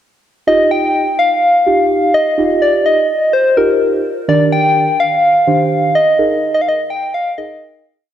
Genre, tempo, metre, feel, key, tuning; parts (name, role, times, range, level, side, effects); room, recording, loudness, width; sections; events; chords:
pop; 126 BPM; 4/4; straight; Eb major; A4 = 440 Hz
soft struck synth lead; melody; 0.5-7.9 s; Bb4 to G5; -12 LUFS; left 1 dB; chorus, tremolo
muted felt-like synth keys; accompaniment; 0.5-7.8 s; Eb3 to C5; -17 LUFS; right 3 dB; chorus
wet lush hall reverb, RT60 2.6 s; dark, warm production; -11 LUFS; side -10 dB against mid
0.5-8.1 verse
fade-out 6.2-8.1
0.5 Ebadd9; 4.3 Bb6/Eb; 6.2 Absus2/Eb